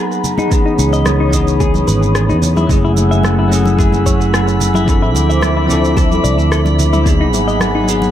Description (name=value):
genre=sunset chillout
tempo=110 BPM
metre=4/4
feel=straight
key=F# dorian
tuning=A4 = 438 Hz
part: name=bell-like tine electric piano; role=accompaniment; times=0.0-8.1 s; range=E3 to A4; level=-17 LUFS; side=equal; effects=auto-pan, tape echo
part: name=airy breathy pad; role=sustained chords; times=0.0-8.1 s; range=A3 to E6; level=-21 LUFS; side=left 2 dB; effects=chorus
part: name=clean electric guitar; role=arpeggios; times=0.0-7.9 s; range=D#4 to E5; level=-22 LUFS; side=left 4 dB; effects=tape echo
part: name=electronic shaker and rim click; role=drums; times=0.1-8.1 s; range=none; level=-22 LUFS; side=right 1 dB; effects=dub echo
part: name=congas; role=percussion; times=0.2-8.1 s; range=none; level=-23 LUFS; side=right 3 dB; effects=none
part: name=electronic kick drum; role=drums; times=0.5-7.2 s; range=none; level=-15 LUFS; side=equal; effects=none
part: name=sustaining fretless electric bass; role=bass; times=0.8-8.1 s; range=F#1 to E2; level=-15 LUFS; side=equal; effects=none
part: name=drifting glass-harmonics texture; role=texture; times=3.4-8.1 s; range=B5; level=-25 LUFS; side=left 1 dB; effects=chorus, built-in reverb
room=moderate spring reverb, RT60 1.7 s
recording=echo-heavy mix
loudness=-11 LUFS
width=side -11 dB against mid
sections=0.0-8.1 A section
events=none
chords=0.0 G#m9; 0.5 C#m9; 2.7 F#m9; 4.9 Dm9; 7.1 G#m9